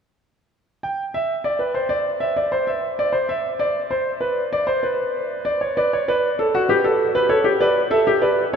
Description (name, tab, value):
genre	classical, baroque-style 3-part fugue for grand piano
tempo	97 BPM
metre	4/4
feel	straight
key	G major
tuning	A4 = 440 Hz
part	clear concert grand piano	solo	0.8-8.6 s	F#4 to G5	-18 LUFS	equal	none
room	wet cathedral reverb, RT60 7.3 s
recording	in a vast, echoing space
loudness	-18 LUFS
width	side -7 dB against mid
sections	0.5-8.6 A section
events	none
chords	0.5 N.C.; 6.7 G; 7.9 A7(no3)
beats	| 0.52 1.14 1.75 2.37 | 2.99 3.61 4.23 4.84 | 5.46 6.08 6.68 7.29 | 7.90 8.51